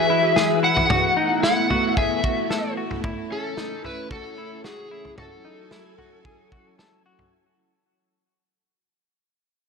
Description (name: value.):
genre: dream pop.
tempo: 112 BPM.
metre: 4/4.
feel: straight.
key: unclear.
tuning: A4 = 440 Hz.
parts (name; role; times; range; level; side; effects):
overdriven slide guitar; melody; 0.0-6.8 s; G#4 to F#5; -23 LUFS; left 2 dB; tape echo.
string machine, full ensemble; sustained chords; 0.0-7.3 s; E3 to G#5; -26 LUFS; equal; ensemble chorus.
semi-hollow electric guitar; arpeggios; 0.0-7.3 s; C#4 to A4; -28 LUFS; left 2 dB; analog chorus, tape echo.
loose indie drum kit; drums; 0.4-7.3 s; kick drum, snare drum, toms; -26 LUFS; right 1 dB; none.
room: light reverb, small room ambience.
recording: dry, gritty hardware recording.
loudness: -19 LUFS.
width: side -5 dB against mid.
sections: 0.0-7.3 A section.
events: fade-out 0.0-7.3.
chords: 0.0 Eadd9; 0.9 B7sus4; 3.0 A; 5.2 F#m7.